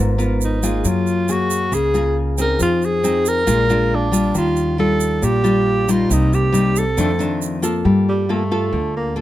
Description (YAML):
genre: bossa nova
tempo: 137 BPM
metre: 4/4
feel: straight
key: unclear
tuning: A4 = 439 Hz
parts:
  - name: nylon-string guitar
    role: accompaniment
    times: 0.0-9.2 s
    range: F2 to Bb4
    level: -18 LUFS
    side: left 2 dB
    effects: none
  - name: upright bass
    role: bass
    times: 0.0-9.2 s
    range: Ab1 to G2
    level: -23 LUFS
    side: equal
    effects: none
  - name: egg shaker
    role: percussion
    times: 0.2-7.8 s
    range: none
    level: -29 LUFS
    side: right 10 dB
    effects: none
  - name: breathy tenor saxophone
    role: melody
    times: 0.4-9.2 s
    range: G3 to Bb4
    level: -20 LUFS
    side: right 1 dB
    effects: none
room: little or no reverb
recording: close, detailed microphones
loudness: -15 LUFS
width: side -14 dB against mid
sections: 0.0-7.8 A section; 7.8-9.2 B section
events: tenor saxophone solo 7.8-9.2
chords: 0.0 Db13 (rootless); 0.8 Gbmaj9; 2.6 Fm7; 3.5 Bb7; 4.3 Ebmaj9; 6.1 Cm7; 7.0 F6; 7.8 Gm9